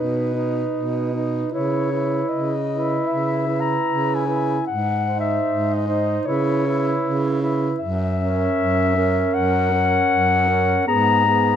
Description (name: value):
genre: classical, lyrical piece for single-reed quartet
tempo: 77 BPM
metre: 4/4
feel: rubato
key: unclear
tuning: A4 = 439 Hz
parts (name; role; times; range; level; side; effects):
- mellow clarinet; melody; 0.0-11.6 s; B4 to A#5; -22 LUFS; left 7 dB; none
- mellow alto saxophone; second line; 0.0-11.6 s; G#4 to B#4; -27 LUFS; right 11 dB; none
- warm tenor saxophone; accompaniment; 0.0-11.6 s; B3 to E4; -25 LUFS; right 1 dB; none
- clear baritone saxophone; bass; 0.0-11.5 s; F#2 to C#3; -24 LUFS; right 2 dB; none
room: light reverb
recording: close, detailed microphones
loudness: -18 LUFS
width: side -9 dB against mid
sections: 0.0-11.6 A section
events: none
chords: 0.0 B; 1.5 C#m7; 4.7 G#; 6.3 C#m7; 7.8 F#7; 10.9 G#m